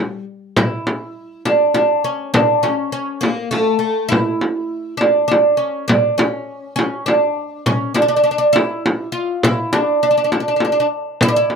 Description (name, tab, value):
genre	Arabic maqam ensemble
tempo	102 BPM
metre	3/4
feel	straight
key	unclear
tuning	A4 = 442 Hz
part	oud	melody	0.0-11.6 s	G3 to F4	-16 LUFS	right 1 dB	none
part	frame drum	percussion	0.6-11.6 s	none	-18 LUFS	equal	none
room	light reverb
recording	close, detailed microphones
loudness	-15 LUFS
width	side -6 dB against mid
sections	0.6-11.6 A section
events	none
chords	none